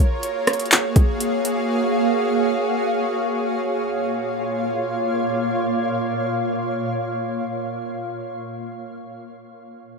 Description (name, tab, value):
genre	hip hop, atmospheric cloud-rap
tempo	free time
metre	none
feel	none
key	Bb minor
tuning	A4 = 439 Hz
part	shimmering ambient pad	sustained chords	0.0-8.3 s	Bb2 to F5	-22 LUFS	right 1 dB	chorus, built-in reverb, sidechain pumping
part	smooth R&B drum kit	drums	0.2-1.6 s	handclaps, hi-hat, kick drum, rim click	-15 LUFS	equal	overdrive
room	moderate studio reverb, RT60 0.6 s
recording	rough home demo mix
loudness	-20 LUFS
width	side -4 dB against mid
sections	0.0-3.6 A section; 3.6-7.5 B section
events	none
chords	0.0 Gbmaj7/Bb; 3.6 Bbm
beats	free time